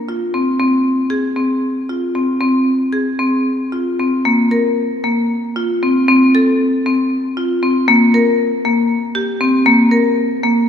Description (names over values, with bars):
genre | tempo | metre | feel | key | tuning
contemporary instrumental, contemporary | 232 BPM (eighths) | 7/8 | straight | unclear | A4 = 440 Hz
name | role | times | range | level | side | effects
marimba with hard mallets | solo | 0.1-10.7 s | Bb3 to Bb4 | -13 LUFS | left 1 dB | none
room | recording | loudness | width
moderate concert hall reverb, RT60 2.5 s | small room reverb | -13 LUFS | side -8 dB against mid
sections
0.0-4.3 A section; 4.3-10.7 B section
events
none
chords
none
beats
0.07 0.33 | 0.59 0.85 1.11 1.37 1.63 1.89 2.15 | 2.41 2.67 2.93 3.19 3.46 3.73 3.99 | 4.25 4.52 4.78 5.04 5.30 5.56 5.82 | 6.07 6.33 6.59 6.85 7.11 7.36 7.62 | 7.87 8.13 8.38 8.64 8.89 9.15 9.41 | 9.66 9.92 10.18 10.43